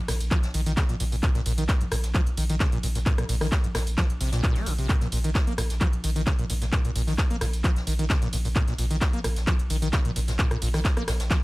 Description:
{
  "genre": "driving peak-time techno",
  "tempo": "131 BPM",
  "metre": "4/4",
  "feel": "straight",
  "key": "Bb minor",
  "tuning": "A4 = 441 Hz",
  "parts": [
    { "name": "saturated sub bass", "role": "bass", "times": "0.0-11.3 s", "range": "Bb1", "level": "-28 LUFS", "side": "equal", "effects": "overdrive, sidechain pumping, low-pass filter" },
    { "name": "acid bass, saw", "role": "riff", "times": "0.1-11.4 s", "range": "Ab2 to Bb3", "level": "-30 LUFS", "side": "equal", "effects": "wide subtle chorus, sidechain pumping, analog delay" },
    { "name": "jazz brush drum kit", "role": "drums", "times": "0.1-11.4 s", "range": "hi-hat, snare drum", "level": "-42 LUFS", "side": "left 2 dB", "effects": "none" },
    { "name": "techno drum kit", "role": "drums", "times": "0.1-11.4 s", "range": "handclaps, hi-hat, ride cymbal, rim click, tambourine", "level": "-31 LUFS", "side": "equal", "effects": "none" },
    { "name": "electronic kick drum", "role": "drums", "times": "0.3-11.4 s", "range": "none", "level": "-25 LUFS", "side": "equal", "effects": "none" }
  ],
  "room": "little or no reverb",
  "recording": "dry, gritty hardware recording",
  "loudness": "-22 LUFS",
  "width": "side -21 dB against mid",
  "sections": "0.0-11.4 A section",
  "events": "none",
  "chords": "none"
}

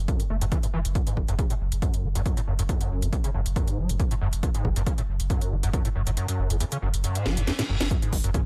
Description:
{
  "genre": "driving peak-time techno",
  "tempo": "138 BPM",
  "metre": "4/4",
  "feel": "straight",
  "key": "F# minor",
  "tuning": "A4 = 440 Hz",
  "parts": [
    { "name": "saturated sub bass", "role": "bass", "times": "0.0-8.3 s", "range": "F#1", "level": "-30 LUFS", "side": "equal", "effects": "sidechain pumping, low-pass filter" },
    { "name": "overdriven acid bass", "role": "riff", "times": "0.1-8.4 s", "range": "E2 to A3", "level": "-32 LUFS", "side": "equal", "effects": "distortion, ensemble chorus, sidechain pumping" },
    { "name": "electronic kick drum", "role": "drums", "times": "0.1-8.4 s", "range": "none", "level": "-28 LUFS", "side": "equal", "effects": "none" },
    { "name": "techno drum kit", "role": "drums", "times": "0.1-8.4 s", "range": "hi-hat, snare drum, toms", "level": "-34 LUFS", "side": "equal", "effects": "overdrive, sidechain pumping on hats, sidechain pumping on toms" },
    { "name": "reverse cymbal", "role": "sound effects", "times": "7.2-7.9 s", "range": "none", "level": "-39 LUFS", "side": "equal", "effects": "none" }
  ],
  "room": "little or no reverb",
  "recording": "none",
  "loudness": "-26 LUFS",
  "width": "mono",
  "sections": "0.0-8.5 A section",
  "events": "kick drops out 6.2-7.9; reverse cymbal 7.2-7.9; drum fill 7.3-7.9",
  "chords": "0.0 F#5"
}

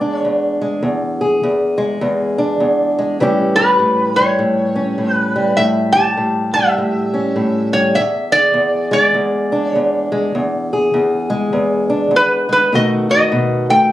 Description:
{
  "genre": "acoustic country blues, solo or duo",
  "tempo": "101 BPM",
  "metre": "4/4",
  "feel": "swing 62% on 8ths",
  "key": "E mixolydian",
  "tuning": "A4 = 440 Hz",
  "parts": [
    { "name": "metal-body resonator slide guitar", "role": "melody", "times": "0.0-13.9 s", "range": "B4 to A5", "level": "-15 LUFS", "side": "equal", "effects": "none" },
    { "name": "fingerpicked old ladder-braced acoustic guitar", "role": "accompaniment", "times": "0.0-13.9 s", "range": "E2 to G#4", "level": "-16 LUFS", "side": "equal", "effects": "none" }
  ],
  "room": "moderate studio ambience, RT60 0.5 s",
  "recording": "recorded on a phone in the room, club reverb, compression",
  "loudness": "-13 LUFS",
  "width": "side -14 dB against mid",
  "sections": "0.0-13.9 A section",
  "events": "none",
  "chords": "0.0 E7; 3.2 A7; 8.0 E7; 12.7 B7"
}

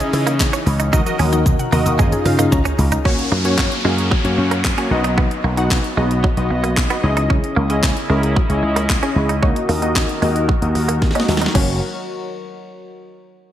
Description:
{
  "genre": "dance-pop",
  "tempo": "113 BPM",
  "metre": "4/4",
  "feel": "straight",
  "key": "F# mixolydian",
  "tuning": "A4 = 440 Hz",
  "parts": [
    { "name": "warm analog keys", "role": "accompaniment", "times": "0.0-11.8 s", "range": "A#3 to A#5", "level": "-22 LUFS", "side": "left 1 dB", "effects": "chorus, sidechain pumping, low-pass filter" },
    { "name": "sweeping resonant pad", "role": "sustained chords", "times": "0.0-11.8 s", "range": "C#3 to D#5", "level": "-26 LUFS", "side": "left 1 dB", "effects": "chorus, sidechain pumping, low-pass filter" },
    { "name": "mallet-like synth pluck", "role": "arpeggios", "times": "0.0-2.6 s", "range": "D#3 to D#6", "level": "-26 LUFS", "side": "left 3 dB", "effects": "chorus, sidechain pumping, digital delay" },
    { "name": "house drum kit", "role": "drums", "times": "0.0-11.7 s", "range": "crash cymbal, handclaps, hi-hat, kick drum, shaker, snare drum, toms", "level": "-19 LUFS", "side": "equal", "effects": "gated reverb" },
    { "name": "direct-recorded clean electric guitar", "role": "riff", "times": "0.1-11.7 s", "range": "F#3 to D#4", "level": "-26 LUFS", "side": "right 4 dB", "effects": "analog chorus, low-pass filter" },
    { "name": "slap bass with an envelope filter", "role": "bass", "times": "0.1-11.8 s", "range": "F#1 to C#3", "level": "-19 LUFS", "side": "equal", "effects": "sidechain pumping" },
    { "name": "downlifter", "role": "sound effects", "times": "3.1-7.3 s", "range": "none", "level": "-27 LUFS", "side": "equal", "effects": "none" }
  ],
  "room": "light reverb, digital ambience",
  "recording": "bright 1980s-style digital production",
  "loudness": "-15 LUFS",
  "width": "side -11 dB against mid",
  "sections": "0.0-3.1 A section; 3.1-11.6 B section; 11.6-13.5 C section",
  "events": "drum fill 0.9-3.1, 11.0-11.6; synth keys fill 2.0-3.1; filter sweep 3.1-11.6",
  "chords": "0.0 C#madd9; 0.9 D#m; 2.0 C#add9; 3.1 F#; 4.9 B; 7.0 C#madd9; 9.4 D#m; 11.6 F#"
}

